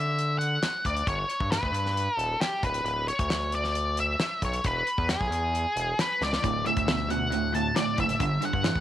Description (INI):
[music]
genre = classic rock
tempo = 135 BPM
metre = 4/4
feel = straight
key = D major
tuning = A4 = 440 Hz
[part]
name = octave-fuzz lead guitar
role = melody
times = 0.0-8.8 s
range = G4 to A5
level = -27 LUFS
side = left 1 dB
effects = distortion
[part]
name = gritty driven synth bass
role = bass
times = 0.0-8.8 s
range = D1 to D3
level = -31 LUFS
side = equal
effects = none
[part]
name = damped 70s drum kit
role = drums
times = 0.2-8.8 s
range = hi-hat, kick drum, snare drum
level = -30 LUFS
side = left 1 dB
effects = none
[part]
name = distorted electric guitar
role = riff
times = 6.4-8.8 s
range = D2 to E3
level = -33 LUFS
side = left 10 dB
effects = overdrive
[part]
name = overdriven electric guitar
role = riff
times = 6.4-8.8 s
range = D2 to E3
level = -30 LUFS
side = right 13 dB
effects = none
[sound]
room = light reverb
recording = 1960s-style stereo with parts hard left and right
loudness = -24 LUFS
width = side -12 dB against mid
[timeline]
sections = 0.0-8.8 A section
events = drum fill 6.2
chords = 0.0 Dadd9; 1.1 G; 2.6 Dsus2; 4.7 E; 6.4 Dadd9; 8.2 G5